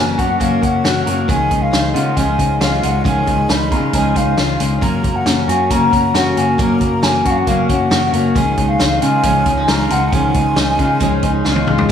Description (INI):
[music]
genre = jangly indie pop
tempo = 136 BPM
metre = 4/4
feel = straight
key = unclear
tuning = A4 = 440 Hz
[part]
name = mellow hollow concert flute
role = melody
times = 0.0-11.5 s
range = E#5 to B5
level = -19 LUFS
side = equal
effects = slapback echo
[part]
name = picked steel-string acoustic guitar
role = accompaniment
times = 0.0-11.9 s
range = C#3 to A#4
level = -22 LUFS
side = right 4 dB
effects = slapback echo
[part]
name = electric guitar through a small old amp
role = arpeggios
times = 0.0-11.9 s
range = D#3 to F#4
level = -19 LUFS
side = left 3 dB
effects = wide subtle chorus, slapback echo
[part]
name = vintage muted picked electric bass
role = bass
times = 0.0-11.9 s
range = F#1 to C#3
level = -20 LUFS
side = left 1 dB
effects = none
[part]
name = vintage drum kit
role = drums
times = 0.2-11.9 s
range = crash cymbal, hi-hat, kick drum, snare drum, toms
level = -19 LUFS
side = left 1 dB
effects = none
[sound]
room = wet lush hall reverb, RT60 2.1 s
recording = big arena sound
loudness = -13 LUFS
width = side -8 dB against mid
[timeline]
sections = 0.0-11.9 A section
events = drum fill 11.4-11.9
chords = 0.0 F#; 1.3 C#add9; 4.8 F#; 8.4 C#add9